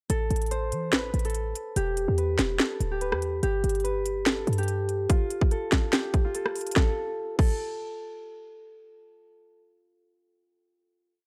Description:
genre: hip hop, trap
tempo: 144 BPM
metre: 4/4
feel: half-time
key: unclear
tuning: A4 = 441 Hz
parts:
  - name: Celtic harp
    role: melody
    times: 0.1-9.6 s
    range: F4 to C5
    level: -33 LUFS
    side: equal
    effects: none
  - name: short 808-style bass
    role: bass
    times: 0.1-5.1 s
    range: D1 to E3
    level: -31 LUFS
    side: equal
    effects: none
  - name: trap drum kit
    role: drums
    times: 0.1-7.5 s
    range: crash cymbal, hi-hat, kick drum, rim click, snare drum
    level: -27 LUFS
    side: equal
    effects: overdrive
room: digital ambience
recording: dry, gritty hardware recording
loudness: -27 LUFS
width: mono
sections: 0.1-6.8 hook; 6.8-10.1 final note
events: none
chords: 0.1 Am; 1.8 Em; 3.4 G; 5.1 N.C.

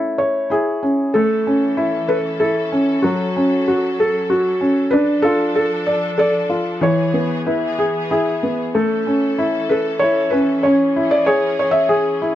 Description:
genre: children's music, lullaby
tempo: 95 BPM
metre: 3/4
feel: rubato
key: A major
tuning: A4 = 440 Hz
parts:
  - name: felt-muted upright piano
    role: melody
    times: 0.0-12.3 s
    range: E3 to E5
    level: -15 LUFS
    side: equal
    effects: none
  - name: clear symphonic string section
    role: sustained chords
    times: 1.1-12.3 s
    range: E3 to A4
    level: -28 LUFS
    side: left 1 dB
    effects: none
room: moderate studio reverb, RT60 0.6 s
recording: worn, warbling old tape, cassette tape, warbly pitch drift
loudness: -15 LUFS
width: side -12 dB against mid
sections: 0.0-1.1 A section; 1.1-12.3 B section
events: none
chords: 0.0 A; 3.0 F#m; 4.9 Dm; 6.8 E; 8.7 A; 10.6 C#m

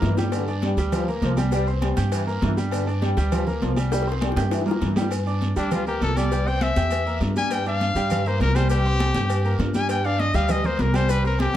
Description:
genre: latin, salsa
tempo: 200 BPM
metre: 4/4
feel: straight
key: unclear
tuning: A4 = 440 Hz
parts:
  - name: mellow trombone section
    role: second line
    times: 0.0-5.0 s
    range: D3 to G3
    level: -30 LUFS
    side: left 1 dB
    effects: none
  - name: bright concert grand piano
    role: accompaniment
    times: 0.0-11.6 s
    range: G3 to G6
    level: -29 LUFS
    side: right 3 dB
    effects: none
  - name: upright bass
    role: bass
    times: 0.0-11.6 s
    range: C2 to G2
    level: -24 LUFS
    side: equal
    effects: none
  - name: congas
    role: percussion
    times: 0.0-11.5 s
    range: none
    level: -29 LUFS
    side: left 1 dB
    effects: none
  - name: cowbell and bongos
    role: percussion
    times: 0.0-11.6 s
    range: none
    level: -32 LUFS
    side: left 8 dB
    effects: none
  - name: guiro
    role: percussion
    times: 0.0-11.5 s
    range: none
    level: -42 LUFS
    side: right 5 dB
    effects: none
  - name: maracas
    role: percussion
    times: 0.0-11.6 s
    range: none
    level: -42 LUFS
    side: right 3 dB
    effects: none
  - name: timbales and agogo bells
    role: percussion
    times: 0.0-11.5 s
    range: none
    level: -34 LUFS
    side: right 4 dB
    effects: none
  - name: bright trumpet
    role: melody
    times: 5.6-11.6 s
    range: D4 to Ab5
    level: -25 LUFS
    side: left 3 dB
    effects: slapback echo
room: moderate studio reverb, RT60 0.6 s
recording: dark, warm production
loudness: -20 LUFS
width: side -12 dB against mid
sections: 0.0-5.1 A section; 5.1-11.6 B section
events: drum fill 0.0-0.3, 3.9-5.1; trumpet solo 5.1-11.6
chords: 0.3 Gm7; 1.5 C7; 2.7 Gm7; 3.9 C7; 5.1 Gm; 6.3 C7; 7.5 Gm7; 8.7 C5; 9.9 Gm

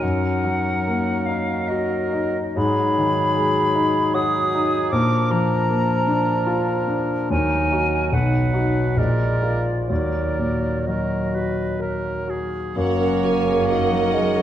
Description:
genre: classical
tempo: 61-78 BPM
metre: 3/4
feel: rubato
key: Eb minor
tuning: A4 = 440 Hz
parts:
  - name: warm concert grand piano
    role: melody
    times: 0.0-14.4 s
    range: Bb1 to Bb4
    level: -22 LUFS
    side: left 2 dB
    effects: none
  - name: bright concert flute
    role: second line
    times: 0.0-14.4 s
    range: D5 to Eb6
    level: -25 LUFS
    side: equal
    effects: none
  - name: clear oboe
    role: second line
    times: 0.0-14.4 s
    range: Ab4 to C#5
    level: -31 LUFS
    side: right 2 dB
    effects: none
  - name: warm clarinet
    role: second line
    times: 0.0-14.4 s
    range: D4 to Gb4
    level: -31 LUFS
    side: left 2 dB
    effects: none
  - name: dark bassoon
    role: accompaniment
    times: 0.0-14.4 s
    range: F3 to A#3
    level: -25 LUFS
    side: right 3 dB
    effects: none
  - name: rich symphonic violin section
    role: melody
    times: 12.8-14.4 s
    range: F#5 to G#5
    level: -34 LUFS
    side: left 2 dB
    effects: none
  - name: rich symphonic violin section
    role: second line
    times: 12.8-14.4 s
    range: C#5 to D#5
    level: -32 LUFS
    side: left 1 dB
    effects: none
  - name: rich symphonic viola section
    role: accompaniment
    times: 12.8-14.4 s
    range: A#4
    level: -29 LUFS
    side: right 6 dB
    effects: none
  - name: dark French horn section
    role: sustained chords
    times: 12.8-13.1 s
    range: F#4 to C#5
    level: -33 LUFS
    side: left 4 dB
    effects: none
  - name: rich symphonic cello section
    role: bass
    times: 12.8-14.4 s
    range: F#2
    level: -31 LUFS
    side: right 3 dB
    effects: none
  - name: rich symphonic double bass section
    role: bass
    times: 12.8-14.4 s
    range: F#1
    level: -31 LUFS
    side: right 5 dB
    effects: none
room: moderate concert hall reverb, RT60 2.0 s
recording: dark, warm production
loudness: -18 LUFS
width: side -11 dB against mid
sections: 0.0-12.8 A section; 12.8-14.4 B section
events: none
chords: 0.0 Ebm/Gb; 4.9 Bb; 7.3 Ebm; 9.0 Bb7; 9.9 Ebm; 12.8 F#

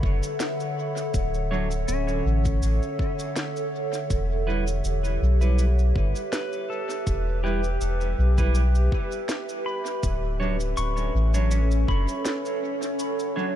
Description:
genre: ambient dub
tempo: 81 BPM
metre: 4/4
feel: swing 54% on 16ths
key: unclear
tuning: A4 = 441 Hz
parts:
  - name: warbly tape-like pad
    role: sustained chords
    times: 0.0-13.6 s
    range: D3 to F#5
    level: -29 LUFS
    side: right 1 dB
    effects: chorus, built-in reverb
  - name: pedal steel guitar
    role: arpeggios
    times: 0.0-13.6 s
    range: C#4 to C#6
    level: -35 LUFS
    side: left 4 dB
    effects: dub echo
  - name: soft dub sub bass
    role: bass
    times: 0.0-12.1 s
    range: D1 to B1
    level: -22 LUFS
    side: equal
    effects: none
  - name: electronic kick drum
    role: drums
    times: 0.0-12.0 s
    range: none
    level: -27 LUFS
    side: equal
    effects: studio reverb
  - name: electronic shaker and snare drum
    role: drums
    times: 0.2-13.3 s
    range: none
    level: -36 LUFS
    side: equal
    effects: studio reverb, dub echo
  - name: clean electric guitar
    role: stabs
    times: 1.5-13.5 s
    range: F#3 to C#5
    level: -34 LUFS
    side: right 4 dB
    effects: dub echo
room: little or no reverb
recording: none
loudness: -22 LUFS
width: side -11 dB against mid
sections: 0.0-13.6 A section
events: none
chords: 0.0 Dmaj7; 4.1 Em; 10.0 Dmaj7

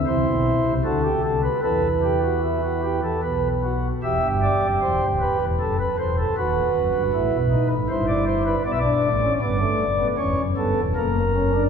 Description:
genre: classical, baroque-style 3-part fugue for pipe organ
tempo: 77 BPM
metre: 3/4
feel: straight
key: E minor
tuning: A4 = 440 Hz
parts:
  - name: pipe organ, flutes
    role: solo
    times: 0.0-11.7 s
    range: D1 to E5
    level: -19 LUFS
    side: equal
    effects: none
room: wet church reverb, RT60 2.9 s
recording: minimal, uncompressed stereo recording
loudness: -19 LUFS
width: side -6 dB against mid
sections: 0.0-4.0 A section; 4.0-11.7 B section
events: none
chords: 0.0 F#m7b5; 1.6 Em; 3.2 B5; 4.0 Em; 5.6 F#m7b5; 6.4 B7/D#; 7.9 Em/G; 8.6 Bm; 10.2 C#m7b5/E; 11.0 F#

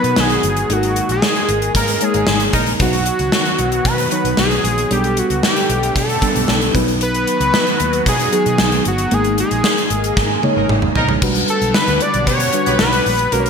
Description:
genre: 1980s-style pop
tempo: 114 BPM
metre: 4/4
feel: straight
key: unclear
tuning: A4 = 440 Hz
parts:
  - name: fat analog lead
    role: melody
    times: 0.0-13.5 s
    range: F#4 to D5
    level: -18 LUFS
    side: equal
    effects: ping-pong delay
  - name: mellow FM electric piano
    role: accompaniment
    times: 0.0-13.5 s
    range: F#3 to C#5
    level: -22 LUFS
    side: equal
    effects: chorus, phaser
  - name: lush unison pad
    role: sustained chords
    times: 0.0-13.5 s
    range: C#3 to F#5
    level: -24 LUFS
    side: equal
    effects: chorus, phaser
  - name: vintage muted fingered electric bass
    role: bass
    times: 0.0-13.5 s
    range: G1 to B2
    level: -22 LUFS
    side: equal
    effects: none
  - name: gated 80s drum kit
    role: drums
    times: 0.0-13.5 s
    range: crash cymbal, hi-hat, kick drum, snare drum, toms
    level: -18 LUFS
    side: equal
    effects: gated reverb
  - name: warm horn section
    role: stabs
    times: 2.1-2.7, 10.6-13.0 s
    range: A#3 to B4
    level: -24 LUFS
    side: equal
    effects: none
room: moderate lush hall reverb, RT60 1.7 s, studio ambience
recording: bright 1980s-style digital production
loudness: -13 LUFS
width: side -6 dB against mid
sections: 0.0-11.2 A section; 11.2-13.5 B section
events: band accent 0.7-2.8, 9.1-11.2; drum fill 10.2-11.2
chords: 0.0 B; 0.7 G#sus2; 2.8 B; 4.9 Gadd9/B; 6.7 B; 9.1 G#sus2; 11.2 Gmaj7/B

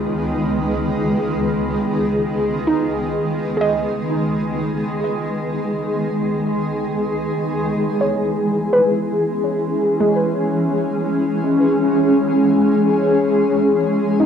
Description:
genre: ambient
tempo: free time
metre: none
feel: none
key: C# minor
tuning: A4 = 440 Hz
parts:
  - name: granular cloud pad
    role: sustained chords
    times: 0.0-14.3 s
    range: C#2 to B4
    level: -17 LUFS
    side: equal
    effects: built-in reverb, cassette tape, plate reverb
  - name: soft round pluck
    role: arpeggios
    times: 0.0-14.3 s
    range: G#3 to D#5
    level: -22 LUFS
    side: right 2 dB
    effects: chorus, cassette tape, tape echo, plate reverb
room: wet studio reverb, RT60 0.5 s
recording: home recording on cassette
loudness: -16 LUFS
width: side -8 dB against mid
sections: 0.0-7.7 A section; 7.7-14.3 B section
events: none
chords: 0.0 G#m/C#; 7.7 C#m

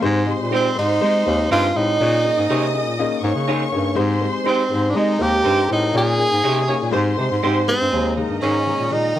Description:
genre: soul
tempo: 122 BPM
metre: 4/4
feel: straight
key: Ab major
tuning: A4 = 436 Hz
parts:
  - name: dark studio string section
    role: second line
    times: 0.0-9.2 s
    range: Ab4 to Eb6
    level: -27 LUFS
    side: right 1 dB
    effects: none
  - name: dark upright piano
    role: accompaniment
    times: 0.0-9.2 s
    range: Eb3 to Eb5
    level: -24 LUFS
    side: left 5 dB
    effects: none
  - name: warm bass clarinet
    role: bass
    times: 0.0-9.2 s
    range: Eb2 to Ab3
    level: -21 LUFS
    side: equal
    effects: none
  - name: vibraphone with soft mallets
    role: second line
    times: 0.5-6.9 s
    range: none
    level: barely audible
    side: none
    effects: none
  - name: electric guitar through a small old amp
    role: stabs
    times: 0.5-8.6 s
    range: Bb3 to Db5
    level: -24 LUFS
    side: right 6 dB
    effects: none
  - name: warm tenor saxophone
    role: melody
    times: 0.6-9.2 s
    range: C4 to Ab4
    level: -19 LUFS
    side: right 1 dB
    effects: none
  - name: warm horn section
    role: second line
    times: 6.7-9.2 s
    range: Eb3 to Db5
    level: -29 LUFS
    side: right 5 dB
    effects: none
room: light reverb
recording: none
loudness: -16 LUFS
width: side -12 dB against mid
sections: 0.0-7.9 A section; 7.9-9.2 B section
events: band accent 5.9-7.9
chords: 0.0 Abmaj7; 2.0 Eb7sus4; 4.0 Abmaj7; 5.9 Eb7sus4; 6.9 Abmaj7; 7.9 Ebsus4

